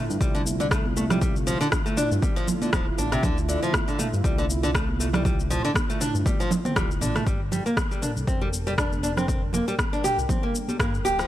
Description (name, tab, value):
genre	afro house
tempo	119 BPM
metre	4/4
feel	swing 56% on 16ths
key	G dorian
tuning	A4 = 439 Hz
part	warm analog pad	sustained chords	0.0-11.3 s	D3 to Bb4	-33 LUFS	right 2 dB	chorus, sidechain pumping
part	nylon-string guitar	arpeggios	0.0-11.3 s	C3 to G4	-27 LUFS	equal	sidechain pumping, analog delay
part	smooth synth bass	bass	0.1-11.2 s	D1 to G2	-29 LUFS	equal	sidechain pumping
part	deep house drum kit	drums	0.1-11.3 s	rim click, shaker, toms	-30 LUFS	left 1 dB	studio reverb
part	electronic kick drum	drums	0.2-10.9 s	none	-27 LUFS	equal	studio reverb
part	congas	percussion	0.5-11.2 s	none	-30 LUFS	right 2 dB	none
room	light reverb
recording	dry, gritty hardware recording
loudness	-22 LUFS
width	side -13 dB against mid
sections	0.0-7.3 A section; 7.3-11.3 B section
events	drop 0.0-7.3; drum fill 6.3-7.3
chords	0.0 Dm7; 7.3 Gm7